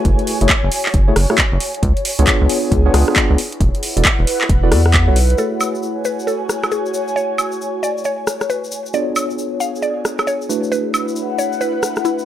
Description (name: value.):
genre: UK garage, two-step garage.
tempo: 135 BPM.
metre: 4/4.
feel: swing 63% on 16ths.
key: F# minor.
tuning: A4 = 443 Hz.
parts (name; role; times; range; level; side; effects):
tine electric piano; stabs; 0.0-12.2 s; A3 to D5; -22 LUFS; equal; medium stereo tremolo, low-pass filter, tape echo.
airy breathy pad; texture; 0.0-12.2 s; E4 to G#5; -24 LUFS; left 1 dB; chorus, phaser, sidechain pumping.
rubbery square bass; bass; 0.1-5.3 s; E1 to E2; -14 LUFS; equal; none.
electronic kick drum; drums; 0.1-5.1 s; none; -18 LUFS; equal; none.
house drum kit; drums; 0.1-12.0 s; handclaps, hi-hat, rim click, woodblock; -18 LUFS; right 1 dB; none.
mallet-like synth pluck; melody; 5.4-12.2 s; E4 to E#5; -23 LUFS; equal; chorus, analog delay.
tube shaker; percussion; 5.4-12.2 s; none; -30 LUFS; left 4 dB; none.
room: digital ambience.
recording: dry, gritty hardware recording.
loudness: -14 LUFS.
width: side -11 dB against mid.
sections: 0.0-5.4 A section; 5.4-12.2 B section.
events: filter sweep on tine electric piano 5.4-12.2.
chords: 0.0 F#m9; 1.8 C#7b9; 3.4 Esus4; 5.4 F#m9; 8.9 C#7b9; 10.5 E9sus4.